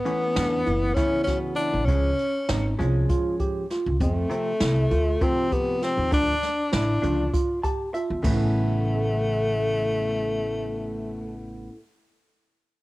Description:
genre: progressive instrumental, band music in an uneven meter.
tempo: 198 BPM (eighths).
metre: 7/8.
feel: straight.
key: unclear.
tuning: A4 = 439 Hz.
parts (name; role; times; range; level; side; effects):
breathy tenor saxophone; melody; 0.0-11.7 s; A3 to D4; -26 LUFS; left 2 dB; none.
bright tine electric piano; arpeggios; 0.0-11.8 s; A3 to A4; -29 LUFS; right 2 dB; medium stereo tremolo, cassette tape.
vintage hollow-body jazz guitar; accompaniment; 0.1-11.7 s; C3 to A5; -31 LUFS; equal; cassette tape.
jazz brush drum kit; drums; 0.1-8.4 s; crash cymbal, hi-hat, kick drum, snare drum; -28 LUFS; equal; cassette tape.
upright bass; bass; 0.4-11.7 s; F#1 to F2; -26 LUFS; equal; none.
room: light reverb, small room ambience.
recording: home recording on cassette.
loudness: -22 LUFS.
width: side -18 dB against mid.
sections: 0.0-8.2 A section; 8.2-12.5 B section.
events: hollow-body jazz guitar fill 7.3-8.2.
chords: 0.0 Aadd9; 1.9 C#; 4.0 F; 6.1 Dm; 8.2 Aadd9.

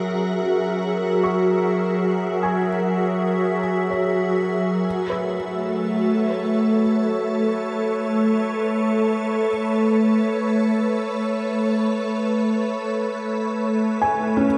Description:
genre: ambient.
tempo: free time.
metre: none.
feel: none.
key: unclear.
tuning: A4 = 439 Hz.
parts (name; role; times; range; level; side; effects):
soft additive organ-like pad; sustained chords; 0.0-14.6 s; F#3 to E5; -22 LUFS; equal; ensemble chorus, built-in reverb.
felt-muted upright piano; arpeggios; 0.0-14.6 s; C#4 to C#6; -30 LUFS; equal; delay.
room: wet cathedral reverb, RT60 6.1 s.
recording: none.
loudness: -22 LUFS.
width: mono.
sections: 0.0-14.6 A section.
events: none.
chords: 0.0 F#7; 4.9 Aadd9.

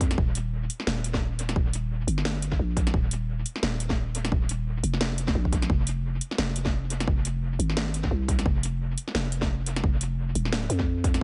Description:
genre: half-time drum and bass.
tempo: 174 BPM.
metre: 4/4.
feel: swing 57% on 16ths, half-time.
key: unclear.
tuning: A4 = 439 Hz.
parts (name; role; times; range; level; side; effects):
growling 808-style bass; bass; 0.0-11.2 s; Eb1 to F2; -30 LUFS; equal; none.
drum and bass drum kit; drums; 0.0-11.2 s; hi-hat, snare drum; -33 LUFS; equal; dub echo.
electronic kick drum; drums; 0.0-11.1 s; none; -28 LUFS; equal; none.
room: little or no reverb.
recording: echo-heavy mix, nothing above 10.8 kHz.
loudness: -27 LUFS.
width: mono.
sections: 0.0-11.2 A section.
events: none.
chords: none.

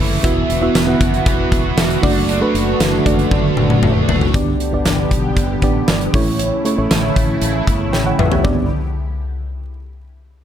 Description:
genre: 1980s-style pop.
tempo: 117 BPM.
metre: 4/4.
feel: straight.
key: G lydian.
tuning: A4 = 440 Hz.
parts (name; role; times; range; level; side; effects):
biting overdriven guitar; accompaniment; 0.0-4.8 s; D3 to E4; -24 LUFS; equal; analog chorus.
mellow FM electric piano; accompaniment; 0.0-8.7 s; A3 to G5; -19 LUFS; right 2 dB; chorus.
lush unison pad; sustained chords; 0.0-8.7 s; C#3 to G4; -23 LUFS; equal; chorus, phaser.
mellow fretless electric bass; bass; 0.0-8.7 s; E1 to B1; -21 LUFS; equal; none.
huge arena drum kit; drums; 0.2-8.6 s; hi-hat, kick drum, snare drum, tambourine, toms; -17 LUFS; equal; none.
room: light reverb.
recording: none.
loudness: -14 LUFS.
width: side -10 dB against mid.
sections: 0.0-4.3 A section; 4.3-8.4 B section; 8.4-10.4 C section.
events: drum fill 3.3-4.3, 7.9-8.4.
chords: 0.2 Esus2; 2.0 D/F#; 4.3 G; 6.1 A; 8.4 G.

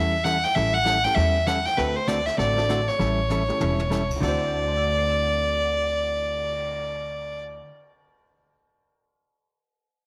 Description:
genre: country, western swing.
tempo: 197 BPM.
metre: 4/4.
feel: swing 62% on 8ths.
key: D mixolydian.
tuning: A4 = 440 Hz.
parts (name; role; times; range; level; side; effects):
clear fiddle; melody; 0.0-7.4 s; B4 to G5; -26 LUFS; equal; none.
hollow-body jazz guitar; accompaniment; 0.0-7.7 s; D3 to A4; -31 LUFS; equal; none.
upright bass; bass; 0.0-7.6 s; E1 to E2; -31 LUFS; equal; none.
jazz brush drum kit; drums; 0.3-6.6 s; brushed snare drum, crash cymbal, cymbal swell, hi-hat, kick drum, snare drum, toms; -40 LUFS; equal; none.
warm upright piano; accompaniment; 1.0-8.4 s; D2 to E7; -39 LUFS; equal; none.
room: moderate echo chamber reverb, RT60 2.1 s.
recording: none.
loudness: -24 LUFS.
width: mono.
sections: 0.0-4.2 A section; 4.2-6.7 B section.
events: drum fill 3.3-3.9.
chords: 0.0 A7; 1.8 D7; 3.0 A7; 4.2 D7.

